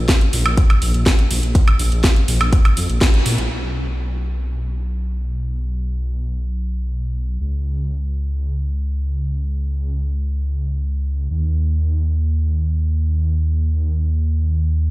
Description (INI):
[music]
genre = progressive house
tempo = 123 BPM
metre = 4/4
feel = straight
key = unclear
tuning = A4 = 440 Hz
[part]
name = dark detuned saw bass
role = bass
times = 0.0-14.9 s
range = Bb1 to Bb2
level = -19 LUFS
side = equal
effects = sidechain pumping
[part]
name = electronic kick drum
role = drums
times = 0.1-3.1 s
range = none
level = -13 LUFS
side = equal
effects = none
[part]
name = house drum kit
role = drums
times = 0.1-3.5 s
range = hi-hat, snare drum, woodblock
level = -21 LUFS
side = equal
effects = none
[sound]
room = little or no reverb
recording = played on a big sound system in a bare room, stone room reverb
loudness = -17 LUFS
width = side -19 dB against mid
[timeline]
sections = 0.0-3.5 A section; 3.5-14.9 B section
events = band accent 3.0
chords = none